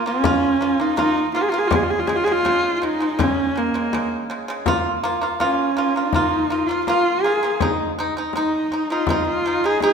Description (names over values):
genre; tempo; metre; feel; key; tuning
mongolian traditional, Mongolian folk; 82 BPM; 4/4; straight; Bb yu mode; A4 = 440 Hz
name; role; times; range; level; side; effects
rich horsehead fiddle; melody; 0.0-9.9 s; Bb3 to Ab4; -20 LUFS; right 1 dB; none
pipa; arpeggios; 0.0-9.9 s; Db3 to F4; -22 LUFS; right 1 dB; none
frame drum; percussion; 0.2-9.9 s; none; -26 LUFS; left 4 dB; none
room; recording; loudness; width
wet scoring stage reverb, RT60 1.5 s; minimal, uncompressed stereo recording; -18 LUFS; side -6 dB against mid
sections
0.0-9.9 A section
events
none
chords
0.0 Bb5; 1.7 Db5; 4.7 Bb5; 7.6 Ab5